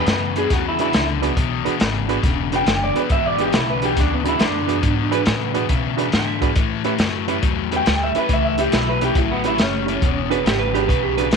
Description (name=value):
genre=electric blues shuffle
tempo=139 BPM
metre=4/4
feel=swing 67% on 8ths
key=E mixolydian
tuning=A4 = 441 Hz
part: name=electric guitar through a small old amp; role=melody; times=0.0-10.4 s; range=B3 to G5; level=-22 LUFS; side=right 1 dB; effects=spring reverb
part: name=overdriven electric guitar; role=riff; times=0.0-11.4 s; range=E2 to G3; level=-23 LUFS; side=left 16 dB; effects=none
part: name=upright bass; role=bass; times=0.0-11.4 s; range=E1 to B2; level=-26 LUFS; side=equal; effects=none
part: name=crunchy breakbeat drum kit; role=drums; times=0.1-11.4 s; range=hi-hat, kick drum, snare drum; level=-21 LUFS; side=equal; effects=none
part: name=clear upright piano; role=accompaniment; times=0.4-11.3 s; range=C#4 to C#5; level=-26 LUFS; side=right 16 dB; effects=none
part: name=clean lap steel guitar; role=second line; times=5.1-7.1, 10.3-11.4 s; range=G4 to G5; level=-24 LUFS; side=right 13 dB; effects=none
room=little or no reverb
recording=1960s-style stereo with parts hard left and right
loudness=-17 LUFS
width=side -5 dB against mid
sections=0.0-11.4 A section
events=none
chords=0.0 E7; 6.6 A7; 10.0 E7